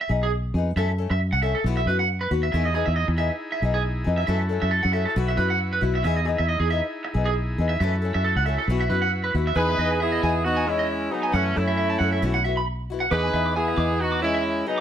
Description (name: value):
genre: highlife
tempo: 136 BPM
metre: 4/4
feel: swing 55% on 16ths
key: E major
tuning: A4 = 440 Hz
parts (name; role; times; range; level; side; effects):
- electric guitar at the edge of break-up; arpeggios; 0.0-14.8 s; G#4 to D6; -26 LUFS; right 3 dB; slapback echo
- picked acoustic archtop guitar; accompaniment; 0.1-14.8 s; D#3 to A4; -30 LUFS; left 7 dB; none
- fingered electric bass; bass; 0.1-14.6 s; B1 to F#2; -24 LUFS; equal; none
- combo organ; sustained chords; 2.5-9.6 s; D#4 to B4; -34 LUFS; equal; none
- warm horn section; melody; 9.6-14.8 s; A3 to B4; -24 LUFS; right 2 dB; none
- bright alto saxophone; second line; 9.6-14.8 s; E3 to D#4; -31 LUFS; left 5 dB; none
room: light reverb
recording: none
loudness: -21 LUFS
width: side -10 dB against mid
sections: 0.0-9.6 A section; 9.6-14.8 B section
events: none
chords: 0.0 Emaj7 (rootless); 0.8 F#m7; 1.6 Bsus4; 2.5 Emaj7; 4.3 F#m7; 5.2 Bsus4; 6.0 Emaj7; 7.8 F#m7; 8.7 Bsus4; 9.6 Emaj7; 11.3 F#m7; 12.2 Bsus4; 13.1 Emaj7